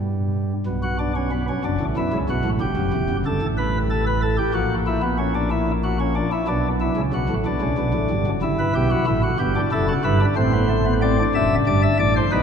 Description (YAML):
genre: classical, baroque-style 4-part fugue for pipe organ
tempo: 62 BPM (dotted quarters)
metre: 12/8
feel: straight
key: E minor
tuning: A4 = 440 Hz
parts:
  - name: pipe organ, sparkling flutes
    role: solo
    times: 0.0-12.4 s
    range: E1 to E5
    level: -18 LUFS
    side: equal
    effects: none
room: wet cathedral reverb, RT60 4.4 s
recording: minimal, uncompressed stereo recording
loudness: -19 LUFS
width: side -7 dB against mid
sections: 0.0-12.4 A section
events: none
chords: 0.0 N.C.; 0.7 Bm; 2.6 Em; 4.5 F#7/A#; 6.5 Bm; 8.4 Em/G; 10.4 Am